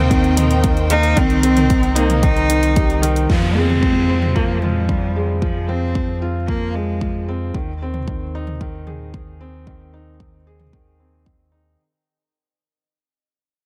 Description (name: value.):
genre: piano and strings electronica.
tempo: 113 BPM.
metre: 4/4.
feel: straight.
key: F minor.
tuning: A4 = 436 Hz.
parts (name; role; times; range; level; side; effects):
warm cello; melody; 0.0-7.3 s; F3 to Eb4; -22 LUFS; equal; delay.
warm chamber string section; sustained chords; 0.0-3.3 s; Eb4 to G5; -30 LUFS; equal; sidechain pumping.
felt-muted upright piano; riff; 0.0-11.8 s; Eb3 to Ab4; -25 LUFS; equal; delay.
warm sub bass; bass; 0.0-11.8 s; C2 to F2; -23 LUFS; equal; sidechain pumping.
deep house drum kit; drums; 0.1-4.7, 7.9-10.7 s; hi-hat, toms; -28 LUFS; equal; none.
electronic kick drum; drums; 0.1-11.4 s; none; -22 LUFS; equal; none.
downlifter; sound effects; 3.3-7.5 s; none; -30 LUFS; equal; none.
room: light reverb, small room ambience.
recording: none.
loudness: -18 LUFS.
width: mono.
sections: 0.0-3.3 A section; 3.3-11.8 B section.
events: drop 0.0-3.3; fade-out 3.3-11.8.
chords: 0.0 Eb6; 1.2 Cm7; 3.3 Fm; 7.5 Ab/Eb.